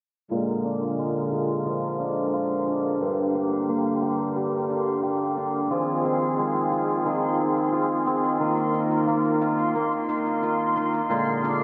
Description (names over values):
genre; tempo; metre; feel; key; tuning
folktronica; 89 BPM; 4/4; straight; unclear; A4 = 435 Hz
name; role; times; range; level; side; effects
musette accordion; sustained chords; 0.3-11.6 s; D3 to Bb4; -29 LUFS; equal; low-pass filter
hammered dulcimer; arpeggios; 0.3-11.6 s; G2 to G4; -27 LUFS; equal; low-pass filter, digital delay
cabasa; drums; 0.3-11.6 s; none; -60 LUFS; equal; none
backwards swelling texture; texture; 1.5-11.6 s; C6; -36 LUFS; equal; built-in reverb
room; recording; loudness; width
moderate plate reverb, RT60 2.9 s; low-pass filter; -25 LUFS; mono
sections
0.3-11.6 A section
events
filter sweep on hammered dulcimer 0.3-11.6; filter sweep on accordion 0.3-11.6; filter sweep 0.3-11.6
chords
0.3 Bb7; 3.0 Gm; 5.7 Fm7; 8.4 Ebsus2; 11.1 Bb7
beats
| 0.31 0.99 1.66 2.34 | 3.01 3.68 4.36 5.03 | 5.71 6.38 7.05 7.73 | 8.40 9.08 9.75 10.43 | 11.10